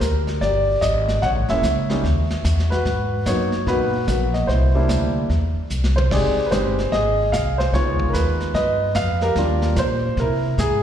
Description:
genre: jazz piano trio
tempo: 148 BPM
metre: 4/4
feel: swing 64% on 8ths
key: unclear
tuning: A4 = 440 Hz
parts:
  - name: warm upright piano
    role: melody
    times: 0.0-10.8 s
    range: Gb3 to Gb5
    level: -21 LUFS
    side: equal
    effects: slapback echo
  - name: upright bass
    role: bass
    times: 0.0-10.8 s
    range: Fb1 to C3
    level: -21 LUFS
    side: equal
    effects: none
  - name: vintage brush drum kit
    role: drums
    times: 0.0-10.8 s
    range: brushed snare drum, crash cymbal, hi-hat, kick drum, snare drum, toms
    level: -29 LUFS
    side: right 1 dB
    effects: slapback echo
room: light reverb, small room ambience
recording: live gig heard through the venue's PA, recital hall reverb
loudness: -18 LUFS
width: side -9 dB against mid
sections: 0.0-10.8 A section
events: drum fill 5.7-6.1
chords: 0.0 Ebmaj7; 1.2 Bbm7b5; 2.0 Dbmadd9/Eb; 2.9 Abm9; 4.5 C7; 6.1 Fm9; 7.7 Db9; 9.4 Ebmaj9; 10.2 C7b13

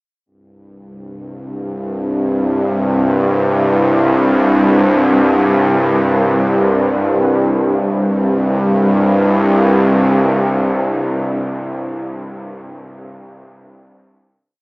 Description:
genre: ambient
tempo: free time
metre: none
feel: none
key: unclear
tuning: A4 = 444 Hz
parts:
  - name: bowed-like drone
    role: solo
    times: 1.5-11.8 s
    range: C2 to G2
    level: -13 LUFS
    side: equal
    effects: built-in reverb, tape echo
room: wet huge ambient reverb, RT60 7.2 s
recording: small speaker sound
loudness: -12 LUFS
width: side -30 dB against mid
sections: 0.3-7.5 A section; 7.5-11.2 final chord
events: none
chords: 0.3 C5

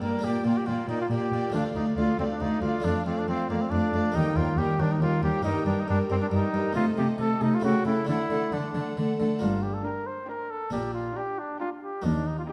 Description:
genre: classical, baroque-style concerto movement with solo episodes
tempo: 138 BPM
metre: 3/4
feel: straight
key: G minor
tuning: A4 = 440 Hz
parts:
  - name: rich chamber violin section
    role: melody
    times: 0.0-12.5 s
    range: Eb5 to Bb5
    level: -44 LUFS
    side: equal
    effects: none
  - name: warm trumpet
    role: melody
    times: 0.0-12.5 s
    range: Bb3 to C5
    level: -33 LUFS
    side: equal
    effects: none
  - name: rich chamber violin section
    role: second line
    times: 0.0-12.5 s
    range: A4 to G5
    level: -41 LUFS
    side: equal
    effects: none
  - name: harpsichord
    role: accompaniment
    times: 0.0-12.5 s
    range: D2 to G4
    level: -34 LUFS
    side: equal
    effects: none
  - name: rich studio viola section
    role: accompaniment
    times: 0.0-12.5 s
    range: G3 to Eb4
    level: -32 LUFS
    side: equal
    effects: none
  - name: warm symphonic cello section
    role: bass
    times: 0.0-12.4 s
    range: D2 to D3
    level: -33 LUFS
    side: equal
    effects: none
  - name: clear chamber double bass section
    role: bass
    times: 9.4-12.4 s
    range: G1 to Eb2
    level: -42 LUFS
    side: equal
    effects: none
room: wet recital hall reverb, RT60 1.5 s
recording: dark, warm production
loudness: -27 LUFS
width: mono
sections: 0.0-9.4 A section; 9.4-12.5 A section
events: none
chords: 0.2 Gm/Bb; 1.5 Dm; 2.8 Dm/F; 4.1 Eb; 5.5 Eb/G; 6.8 Adim/C; 7.6 A7/C#; 8.1 D; 9.4 Gm; 10.7 Gm/Bb

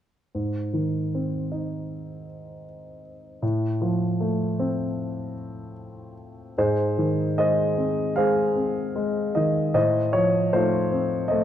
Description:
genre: classical, lyrical solo piano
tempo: 77 BPM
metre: 4/4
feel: rubato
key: Ab major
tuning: A4 = 442 Hz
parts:
  - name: dark concert grand piano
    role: solo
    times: 0.3-11.4 s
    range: Ab2 to F5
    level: -23 LUFS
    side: equal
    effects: none
room: light reverb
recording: dark, warm production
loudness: -22 LUFS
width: side -10 dB against mid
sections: 0.3-6.6 A section; 6.6-11.4 B section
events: none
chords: 0.3 Ab; 3.4 F/A; 6.6 Ab; 9.8 F7/A

